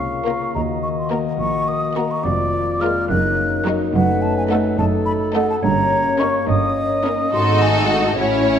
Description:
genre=cinematic, playful, whimsical film cue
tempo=71 BPM (dotted quarters)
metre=6/8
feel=straight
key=unclear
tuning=A4 = 439 Hz
part: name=mellow hollow concert flute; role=second line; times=0.0-8.6 s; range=F#5 to Gb6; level=-23 LUFS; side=equal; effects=none
part: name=warm clarinet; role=second line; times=0.0-8.6 s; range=A4 to F5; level=-25 LUFS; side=left 1 dB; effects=none
part: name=dark French horn section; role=sustained chords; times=0.0-8.6 s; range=A3 to Gb4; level=-24 LUFS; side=left 2 dB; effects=none
part: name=concert harp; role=arpeggios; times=0.0-8.6 s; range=F2 to Gb5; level=-26 LUFS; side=left 6 dB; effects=none
part: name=rich studio cello section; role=bass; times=0.0-8.6 s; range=Eb2 to Db3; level=-25 LUFS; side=right 4 dB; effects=none
part: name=rich studio double bass section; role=bass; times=0.0-8.6 s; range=F1 to Eb2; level=-26 LUFS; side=right 3 dB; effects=none
part: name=clear studio violin section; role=melody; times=0.3-8.6 s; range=A4 to C#5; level=-25 LUFS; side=left 4 dB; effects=none
part: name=clear studio violin section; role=second line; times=0.3-8.6 s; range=Eb4 to Gb4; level=-28 LUFS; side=left 2 dB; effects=none
part: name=rich studio viola section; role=accompaniment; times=0.3-8.6 s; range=Gb3 to D#4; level=-25 LUFS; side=right 3 dB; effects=none
room=wet scoring stage reverb, RT60 1.7 s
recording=none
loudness=-16 LUFS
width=side -8 dB against mid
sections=0.0-8.6 A section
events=none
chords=0.0 Bbm/Db; 0.6 Ebm; 2.3 Bb7/F; 3.1 Ebm/Gb; 3.9 D#dim/F#; 5.6 D#7/G; 7.3 G#5

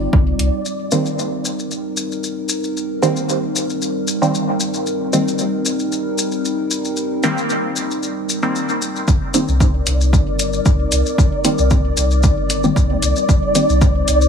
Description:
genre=dub techno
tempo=114 BPM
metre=4/4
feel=swing 53% on 16ths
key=C minor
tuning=A4 = 440 Hz
part: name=dark analog pad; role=sustained chords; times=0.0-14.3 s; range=G3 to C5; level=-22 LUFS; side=equal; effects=chorus, phaser, sidechain pumping
part: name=warm sub bass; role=bass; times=0.0-0.5, 9.1-14.3 s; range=G1 to C2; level=-18 LUFS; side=equal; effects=sidechain pumping
part: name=flickering grainy texture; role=texture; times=0.0-0.7, 9.9-14.3 s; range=D5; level=-22 LUFS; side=equal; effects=built-in reverb, sidechain pumping
part: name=electronic kick drum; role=drums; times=0.1-0.2, 9.1-13.9 s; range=none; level=-16 LUFS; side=equal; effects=overdrive
part: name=electronic hi-hat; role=drums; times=0.4-0.5, 9.3-14.2 s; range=none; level=-22 LUFS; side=right 1 dB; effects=overdrive, low-pass filter on hats
part: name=maracas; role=percussion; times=0.7-14.3 s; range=none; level=-25 LUFS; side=left 4 dB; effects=none
part: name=filtered dub chord stab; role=stabs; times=0.9-13.7 s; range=Eb3 to C4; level=-21 LUFS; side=right 1 dB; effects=chorus, phaser, sidechain pumping, dub echo
room=light reverb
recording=none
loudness=-15 LUFS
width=side -6 dB against mid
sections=0.7-9.1 A section; 9.1-14.3 B section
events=filter sweep on synth stab 9.1-14.3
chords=0.0 Cm; 0.7 Cm7

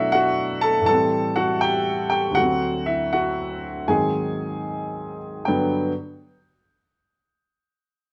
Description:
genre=solo jazz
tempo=80 BPM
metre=4/4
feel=swing 66% on 8ths, rubato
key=G major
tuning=A4 = 442 Hz
part: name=warm baby grand piano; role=solo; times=0.0-5.9 s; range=D2 to A5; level=-22 LUFS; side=equal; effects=none
room=light reverb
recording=none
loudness=-23 LUFS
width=mono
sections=0.0-5.5 A section; 5.5-8.1 B section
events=none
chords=0.0 Bm7; 0.9 Am7; 2.4 D7; 3.9 Ab7; 5.5 Gmaj7

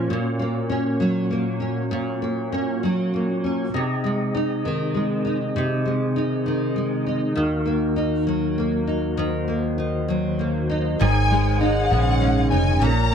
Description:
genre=six-eight pop ballad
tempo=66 BPM (dotted quarters)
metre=6/8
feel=straight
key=unclear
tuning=A4 = 436 Hz
part: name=nylon-string guitar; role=accompaniment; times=0.0-13.1 s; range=Ab2 to Eb4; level=-22 LUFS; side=equal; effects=double-tracked left and right
part: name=percussive tonewheel organ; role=sustained chords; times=0.0-13.1 s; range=Eb2 to Bb5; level=-27 LUFS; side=left 1 dB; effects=fast rotary speaker
part: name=warm studio violin section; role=second line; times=11.0-13.1 s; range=Gb5 to Bb5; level=-24 LUFS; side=left 4 dB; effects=none
part: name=picked steel-string acoustic guitar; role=arpeggios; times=11.0-13.1 s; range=Eb3 to Ab4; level=-27 LUFS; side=right 13 dB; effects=none
part: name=vintage muted fingered electric bass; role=bass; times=11.0-13.1 s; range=F1 to Bb1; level=-20 LUFS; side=equal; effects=none
room=light reverb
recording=dry, close 1970s-style studio recording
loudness=-20 LUFS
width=side -7 dB against mid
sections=0.0-11.0 A section; 11.0-13.1 B section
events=none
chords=0.1 Gb/Bb; 3.7 Ab/C; 7.4 Ebm; 11.0 Absus4

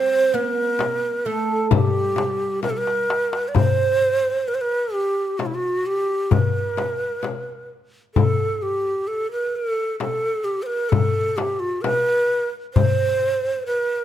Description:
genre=Arabic maqam ensemble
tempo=130 BPM (eighths)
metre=10/8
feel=straight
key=G maqam rast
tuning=A4 = 440 Hz
part: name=breathy bright low ney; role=melody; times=0.0-14.0 s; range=E4 to D5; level=-21 LUFS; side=right 2 dB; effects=none
part: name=oud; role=second line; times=0.0-3.1 s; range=G3 to C4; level=-28 LUFS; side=right 5 dB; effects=none
part: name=darbuka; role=percussion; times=0.3-13.3 s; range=none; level=-22 LUFS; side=left 2 dB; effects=none
part: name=frame drum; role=percussion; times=0.8-13.0 s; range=none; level=-24 LUFS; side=left 8 dB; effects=none
room=light reverb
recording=close, detailed microphones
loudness=-19 LUFS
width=side -11 dB against mid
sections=0.0-3.6 A section; 3.6-14.0 B section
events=drum fill 2.6-3.6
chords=none

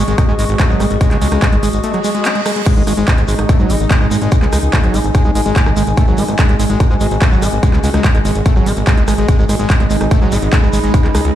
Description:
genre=psychedelic trance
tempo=145 BPM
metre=4/4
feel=straight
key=G# minor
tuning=A4 = 440 Hz
part: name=evolving wavetable pad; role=sustained chords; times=0.0-11.3 s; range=G#3 to F#4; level=-22 LUFS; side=right 1 dB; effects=chorus, built-in reverb, sidechain pumping
part: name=overdriven acid bass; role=riff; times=0.0-11.2 s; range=F#3 to D#4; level=-19 LUFS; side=right 1 dB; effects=distortion, auto-pan, sidechain pumping, tape echo
part: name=fat analog bass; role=bass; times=0.0-11.3 s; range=G#1 to G#2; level=-16 LUFS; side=equal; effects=none
part: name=warbly tape-like pad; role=texture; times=0.0-11.3 s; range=G#4 to C#6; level=-23 LUFS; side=left 2 dB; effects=chorus, built-in reverb, sidechain pumping
part: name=big-room dance drum kit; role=drums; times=0.1-11.3 s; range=crash cymbal, handclaps, hi-hat, rim click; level=-22 LUFS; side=equal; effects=overdrive
part: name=shekere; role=percussion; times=0.1-11.3 s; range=none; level=-32 LUFS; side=left 4 dB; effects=none
part: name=electronic kick drum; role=drums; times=0.2-11.0 s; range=none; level=-12 LUFS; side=equal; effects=overdrive
part: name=reverse cymbal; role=sound effects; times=2.0-2.7 s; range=none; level=-26 LUFS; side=right 5 dB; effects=none
room=digital ambience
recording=played on a big sound system in a bare room, large studio reverb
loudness=-11 LUFS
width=side -12 dB against mid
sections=0.0-11.3 A section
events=break 1.8-2.7; reverse cymbal 2.0-2.7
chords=0.0 G#5

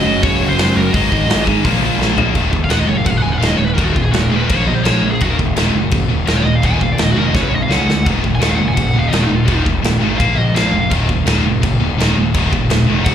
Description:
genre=heavy metal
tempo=168 BPM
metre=4/4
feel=straight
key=Eb minor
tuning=A4 = 439 Hz
part: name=high-gain lead guitar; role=melody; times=0.0-10.9, 13.0-13.1 s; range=Eb4 to Ab5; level=-21 LUFS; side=equal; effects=distortion, slapback echo, ping-pong delay
part: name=high-gain distorted guitar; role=riff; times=0.0-13.1 s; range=Eb2 to Db4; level=-22 LUFS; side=right 10 dB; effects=distortion, slapback echo
part: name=scooped high-gain guitar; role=riff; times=0.0-13.1 s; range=Eb2 to Db4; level=-20 LUFS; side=left 9 dB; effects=distortion, slapback echo
part: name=sludgy distorted guitar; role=riff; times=0.0-2.4 s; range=Gb2 to Bb3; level=-21 LUFS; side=equal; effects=overdrive, slapback echo
part: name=fuzz picked electric bass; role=bass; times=0.0-13.1 s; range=Eb1 to Ab2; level=-18 LUFS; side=equal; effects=overdrive
part: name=big rock drum kit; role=drums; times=0.2-13.1 s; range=crash cymbal, hi-hat, kick drum, snare drum, toms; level=-18 LUFS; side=right 1 dB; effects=none
room=studio reverb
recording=live gig heard through the venue's PA, club reverb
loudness=-12 LUFS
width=side -9 dB against mid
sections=0.0-2.4 A section; 2.4-13.1 B section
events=drum fill 2.0-2.4, 7.3-8.1; lead electric guitar solo 2.4-13.1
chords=0.0 Gb5; 0.9 Ab5; 1.6 Bb5; 2.4 Ebm; 4.5 Bb5; 5.2 Ebm; 7.3 Gb5; 7.7 Db5; 8.1 Ebm; 10.2 Bb5; 10.9 Ebm

